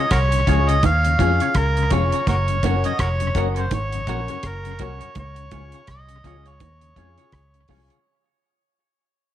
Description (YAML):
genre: roots reggae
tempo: 83 BPM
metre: 4/4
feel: swing 58% on 16ths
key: Db major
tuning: A4 = 439 Hz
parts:
  - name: overdriven harmonica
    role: melody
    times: 0.0-7.7 s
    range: Gb4 to F5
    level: -24 LUFS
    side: right 1 dB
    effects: tape echo
  - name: clean electric guitar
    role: accompaniment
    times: 0.0-8.0 s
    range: F4 to Db5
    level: -32 LUFS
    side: right 10 dB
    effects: spring reverb, tape echo
  - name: mellow tonewheel organ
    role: accompaniment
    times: 0.0-8.0 s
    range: Gb2 to Db4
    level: -30 LUFS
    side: left 10 dB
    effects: chorus vibrato, slow rotary speaker
  - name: vintage muted fingered electric bass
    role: bass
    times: 0.1-7.9 s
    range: F1 to F2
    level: -22 LUFS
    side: equal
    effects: none
  - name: damped 70s drum kit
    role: drums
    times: 0.1-8.0 s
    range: hi-hat, kick drum, rim click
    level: -25 LUFS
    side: equal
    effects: tape echo
  - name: warm upright piano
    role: stabs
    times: 0.5-7.9 s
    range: Db4 to Bb4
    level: -30 LUFS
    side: left 10 dB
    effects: none
  - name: bongos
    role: percussion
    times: 0.8-7.9 s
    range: none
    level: -30 LUFS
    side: right 10 dB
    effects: none
room: light reverb, studio reverb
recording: 1960s-style stereo with parts hard left and right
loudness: -17 LUFS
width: side -12 dB against mid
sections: 0.0-8.1 A section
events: fade-out 0.0-8.1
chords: 0.0 Db; 2.3 Gb; 5.2 Db